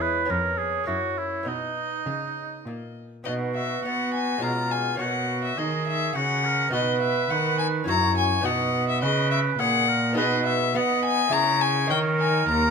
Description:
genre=classical, baroque-style sonata movement with continuo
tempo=104 BPM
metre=3/4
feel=straight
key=B major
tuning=A4 = 440 Hz
part: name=warm violin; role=melody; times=0.0-12.7 s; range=C#5 to A#5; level=-26 LUFS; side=left 8 dB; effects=none
part: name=warm oboe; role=second line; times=0.0-12.7 s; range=D#4 to D#5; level=-27 LUFS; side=right 7 dB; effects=none
part: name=lute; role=accompaniment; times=0.0-12.7 s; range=D#2 to C#5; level=-32 LUFS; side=equal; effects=none
part: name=rich cello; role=bass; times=0.0-12.7 s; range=D#2 to B3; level=-27 LUFS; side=right 1 dB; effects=none
room=wet large studio reverb, RT60 1.4 s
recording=minimal, uncompressed stereo recording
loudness=-22 LUFS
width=side -5 dB against mid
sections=0.0-3.3 A section; 3.3-12.7 B section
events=none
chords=0.3 C#7/E#; 0.9 F#7; 1.5 B; 4.4 C#7/B; 5.0 F#/B; 6.7 B; 7.9 F#7; 8.4 B; 10.2 G#m/B; 11.3 A#m7b5/C#; 11.9 D#5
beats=0.30 0.88 | 1.47 2.06 2.66 | 3.26 3.85 4.43 | 5.00 5.58 6.16 | 6.74 7.31 7.88 | 8.45 9.02 9.59 | 10.17 10.74 11.32 | 11.90 12.48

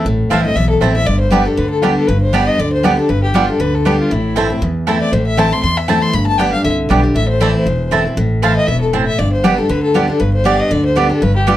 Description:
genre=bluegrass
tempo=236 BPM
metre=4/4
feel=swing 54% on 8ths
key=A minor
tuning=A4 = 440 Hz
part: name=bluegrass banjo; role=melody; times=0.0-8.0 s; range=A3 to G4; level=-24 LUFS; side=right 2 dB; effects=none
part: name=picked steel-string acoustic guitar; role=accompaniment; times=0.0-11.6 s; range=E2 to G4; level=-16 LUFS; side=left 1 dB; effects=none
part: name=upright bass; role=bass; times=0.0-11.6 s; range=E1 to E2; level=-18 LUFS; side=equal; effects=none
part: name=dark fiddle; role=melody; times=0.3-11.6 s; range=E4 to C6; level=-18 LUFS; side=left 3 dB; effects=none
part: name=mandolin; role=stabs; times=0.3-11.6 s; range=B3 to A5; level=-17 LUFS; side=right 5 dB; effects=none
room=moderate studio ambience, RT60 0.5 s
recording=dark, warm production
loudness=-12 LUFS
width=side -13 dB against mid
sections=0.1-8.2 A section; 8.2-11.6 A section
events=none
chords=0.1 Am; 1.1 G; 4.1 Am; 6.1 G; 7.2 Am; 9.2 G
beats=| 0.05 0.31 0.56 0.81 | 1.07 1.32 1.57 1.83 | 2.08 2.33 2.59 2.84 | 3.09 3.35 3.60 3.85 | 4.11 4.36 4.62 4.87 | 5.12 5.38 5.63 5.88 | 6.14 6.39 6.65 6.90 | 7.15 7.41 7.66 7.92 | 8.17 8.43 8.68 8.93 | 9.19 9.44 9.70 9.95 | 10.20 10.46 10.71 10.97 | 11.22 11.47

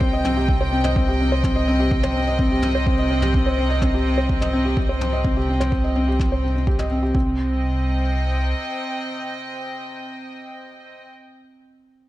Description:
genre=piano and strings electronica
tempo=126 BPM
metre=4/4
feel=straight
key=C minor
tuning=A4 = 440 Hz
part: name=warm studio string section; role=sustained chords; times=0.0-11.1 s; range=C3 to G5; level=-27 LUFS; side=equal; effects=sidechain pumping
part: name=felt-muted upright piano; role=riff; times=0.0-12.1 s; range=C4 to Eb5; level=-23 LUFS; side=equal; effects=digital delay
part: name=dark detuned saw bass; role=bass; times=0.0-8.5 s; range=C2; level=-22 LUFS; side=equal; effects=tube saturation, sidechain pumping
part: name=electronic kick drum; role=drums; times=0.0-7.2 s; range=none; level=-22 LUFS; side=equal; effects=none
part: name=toms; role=drums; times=0.2-6.9 s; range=none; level=-33 LUFS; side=equal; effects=none
room=light reverb, small room ambience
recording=none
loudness=-18 LUFS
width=side -15 dB against mid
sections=0.0-7.2 A section; 7.2-11.0 B section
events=none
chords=0.0 Cm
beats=0.01 0.48 0.96 | 1.44 1.91 2.39 2.86 | 3.34 3.82 4.29 4.77 | 5.25 5.72 6.20 6.67 | 7.15 7.63 8.10 8.58 | 9.05 9.53 10.01 10.48

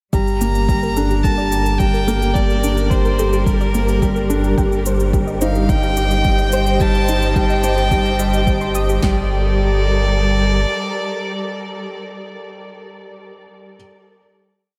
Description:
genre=piano and strings electronica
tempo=108 BPM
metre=4/4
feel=straight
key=G minor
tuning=A4 = 438 Hz
part: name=rich violin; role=melody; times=0.1-12.0 s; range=Bb4 to Bb5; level=-25 LUFS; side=equal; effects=analog delay
part: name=muted studio string section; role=sustained chords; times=0.1-12.0 s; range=G3 to Eb5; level=-28 LUFS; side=equal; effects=sidechain pumping
part: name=soft round pluck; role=arpeggios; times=0.1-9.3 s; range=G4 to Eb6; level=-31 LUFS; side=equal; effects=none
part: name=felt-muted upright piano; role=riff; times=0.1-13.8 s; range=G3 to C5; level=-24 LUFS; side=equal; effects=analog delay
part: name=warm sub bass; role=bass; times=0.1-10.7 s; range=G1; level=-22 LUFS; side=equal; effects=sidechain pumping
part: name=deep house drum kit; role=drums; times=0.1-9.2 s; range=kick drum, snare drum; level=-21 LUFS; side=equal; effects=none
part: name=shaker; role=drums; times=0.1-9.0 s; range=none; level=-36 LUFS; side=equal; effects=none
room=wet huge ambient reverb, RT60 8.4 s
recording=dreamy mix soaked in reverb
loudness=-17 LUFS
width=mono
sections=0.1-9.0 build; 9.0-11.2 final chord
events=build-up 0.1-9.0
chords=0.1 Gmadd9; 4.6 Cm/G; 9.0 Gmadd9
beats=| 0.14 0.69 1.25 1.80 | 2.36 2.92 3.47 4.03 | 4.58 5.14 5.69 6.25 | 6.80 7.36 7.92 8.47 | 9.03 9.58 10.14 10.69

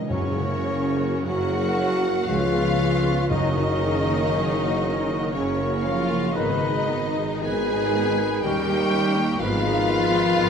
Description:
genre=classical, slow romantic movement for symphony orchestra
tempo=58 BPM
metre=3/4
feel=uneven beats, rubato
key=F# major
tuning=A4 = 440 Hz
part: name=warm symphonic violin section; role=melody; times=0.0-10.5 s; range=C#5 to G#5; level=-29 LUFS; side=left 3 dB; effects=none
part: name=warm studio violin section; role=second line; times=0.0-10.5 s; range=C#4 to G#4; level=-32 LUFS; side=left 5 dB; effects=none
part: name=mellow French horn section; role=sustained chords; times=0.0-10.5 s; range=C#4 to G#4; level=-28 LUFS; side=left 2 dB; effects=none
part: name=concert harp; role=arpeggios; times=0.0-10.5 s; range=F#2 to C#6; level=-31 LUFS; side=left 4 dB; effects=none
part: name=warm symphonic cello section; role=bass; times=0.0-10.5 s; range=C#3 to G#3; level=-30 LUFS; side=right 3 dB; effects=none
part: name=timpani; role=percussion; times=0.0-4.8 s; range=F#2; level=-31 LUFS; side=right 1 dB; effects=none
part: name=bright silver concert flute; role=second line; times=0.1-10.5 s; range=B5 to C#6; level=-33 LUFS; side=left 1 dB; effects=none
part: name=warm clarinet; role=second line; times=0.1-10.5 s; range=A#4 to B4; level=-33 LUFS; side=right 1 dB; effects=none
part: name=dark bassoon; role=accompaniment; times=0.1-10.5 s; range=C#3 to D#3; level=-32 LUFS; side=right 1 dB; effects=none
part: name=warm symphonic viola section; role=accompaniment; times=0.1-10.5 s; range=D#3 to F#4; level=-30 LUFS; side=right 2 dB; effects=none
part: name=clear symphonic double bass section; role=bass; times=0.1-10.5 s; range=F#1 to F#2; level=-32 LUFS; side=right 3 dB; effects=none
part: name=mellow tuba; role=bass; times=0.1-10.5 s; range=F#1 to D#2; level=-31 LUFS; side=right 4 dB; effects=none
room=wet scoring stage reverb, RT60 1.6 s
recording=minimal, uncompressed stereo recording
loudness=-20 LUFS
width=side -7 dB against mid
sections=0.1-10.5 A section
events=none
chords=0.1 F#; 2.3 C#7; 3.3 F#; 6.3 G#m; 8.4 D#7; 9.4 G#m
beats=| 0.09 1.25 2.29 | 3.30 4.33 5.34 | 6.35 7.44 8.44 | 9.41 10.37

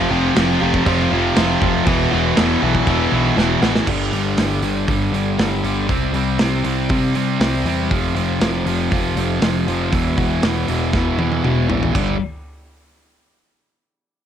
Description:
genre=quiet-loud alternative rock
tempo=119 BPM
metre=4/4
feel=straight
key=G mixolydian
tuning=A4 = 440 Hz
part: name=distorted electric guitar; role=riff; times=0.0-12.1 s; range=E2 to C4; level=-22 LUFS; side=right 10 dB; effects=overdrive
part: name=thick fuzz guitar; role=riff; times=0.0-12.2 s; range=E2 to C4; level=-21 LUFS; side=left 8 dB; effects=distortion
part: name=tight distorted guitar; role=riff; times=0.0-3.9 s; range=E2 to F3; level=-20 LUFS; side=right 1 dB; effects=distortion
part: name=growling picked electric bass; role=bass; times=0.0-12.2 s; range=E1 to C3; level=-23 LUFS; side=equal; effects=overdrive
part: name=big rock drum kit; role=drums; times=0.4-12.1 s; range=crash cymbal, hi-hat, kick drum, snare drum, toms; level=-21 LUFS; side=right 1 dB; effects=cassette tape
room=little or no reverb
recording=home recording on cassette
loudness=-16 LUFS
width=side -9 dB against mid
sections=0.0-3.9 A section; 3.9-11.9 B section; 11.9-14.0 C section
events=drum fill 3.4-3.9, 10.9-11.9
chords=0.0 F5; 1.9 E5; 3.9 G5; 5.9 C5; 7.9 F5; 9.9 E5; 11.9 G5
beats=0.37 0.87 1.37 | 1.87 2.37 2.87 3.37 | 3.88 4.38 4.88 5.39 | 5.89 6.40 6.90 7.41 | 7.91 8.42 8.92 9.43 | 9.93 10.44 10.94 11.44 | 11.95

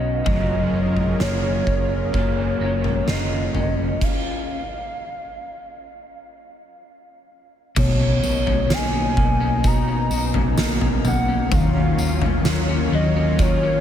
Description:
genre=dream pop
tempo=64 BPM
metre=4/4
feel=straight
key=unclear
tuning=A4 = 440 Hz
part: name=warbly nostalgic lead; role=melody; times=0.0-13.8 s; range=C#5 to A#5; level=-27 LUFS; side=equal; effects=chorus, ping-pong delay
part: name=raw garage guitar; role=accompaniment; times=0.0-4.5 s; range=F#2 to A#4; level=-33 LUFS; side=right 5 dB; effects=overdrive, tremolo, ensemble chorus
part: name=lush unison pad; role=sustained chords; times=0.0-13.8 s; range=B2 to A#4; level=-28 LUFS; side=right 1 dB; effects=chorus
part: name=electric guitar at the edge of break-up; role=arpeggios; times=0.0-13.8 s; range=B2 to F#4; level=-24 LUFS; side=left 4 dB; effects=wide subtle chorus, ping-pong delay
part: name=vintage muted fingered electric bass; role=bass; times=0.0-13.5 s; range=F#1 to D#2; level=-24 LUFS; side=right 1 dB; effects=none
part: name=oversized low-tuned drum kit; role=drums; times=0.3-13.6 s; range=crash cymbal, kick drum, snare drum, tambourine, toms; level=-23 LUFS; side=equal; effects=none
room=little or no reverb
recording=none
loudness=-18 LUFS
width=side -10 dB against mid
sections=0.0-7.8 A section; 7.8-13.8 B section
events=stop 4.0-7.8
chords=0.3 F#maj7; 4.0 N.C.; 7.8 Bmaj9; 11.5 D#m9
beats=| 0.27 1.20 2.14 3.08 | 4.01 4.95 5.89 6.83 | 7.76 8.70 9.64 10.58 | 11.52 12.45 13.39

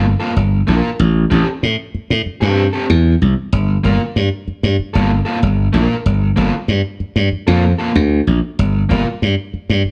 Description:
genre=funk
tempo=95 BPM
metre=4/4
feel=straight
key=G dorian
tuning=A4 = 442 Hz
part: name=overdriven electric guitar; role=accompaniment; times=0.0-9.1 s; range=Bb3 to Bb4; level=-22 LUFS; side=equal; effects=none
part: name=glassy slap bass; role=bass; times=0.0-9.9 s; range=G1 to A2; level=-16 LUFS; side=equal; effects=none
room=moderate large studio reverb, RT60 1.2 s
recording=band playing live in one room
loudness=-16 LUFS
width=mono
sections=0.0-9.9 A section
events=none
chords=0.0 Gm9; 1.0 Am7; 3.5 Gm7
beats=0.36 | 0.99 1.63 2.26 2.89 | 3.52 4.16 4.79 5.42 | 6.05 6.69 7.32 7.95 | 8.58 9.21 9.85

